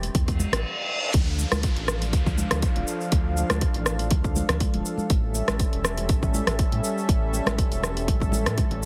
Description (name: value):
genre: afro house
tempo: 121 BPM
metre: 4/4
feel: swing 54% on 16ths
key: unclear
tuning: A4 = 440 Hz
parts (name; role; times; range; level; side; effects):
- warm analog pad; sustained chords; 0.0-8.9 s; F3 to F5; -34 LUFS; equal; chorus, sidechain pumping
- round analog bass; bass; 0.0-8.9 s; D1 to A2; -30 LUFS; equal; sidechain pumping
- deep house drum kit; drums; 0.0-8.9 s; hi-hat, rim click, shaker; -31 LUFS; equal; none
- congas; percussion; 0.0-8.8 s; none; -35 LUFS; equal; none
- electronic kick drum; drums; 0.1-8.7 s; none; -26 LUFS; equal; none
- reverse cymbal and downlifter; sound effects; 0.4-5.1 s; none; -35 LUFS; equal; none
room: little or no reverb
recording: heavily compressed radio sound, multiband compression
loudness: -24 LUFS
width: mono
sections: 0.0-1.1 A section; 1.1-8.9 B section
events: reverse cymbal 0.4-1.1; stop 0.6-1.1; drop 1.1-8.9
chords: 0.0 A7 (rootless); 1.1 Dm; 5.1 A7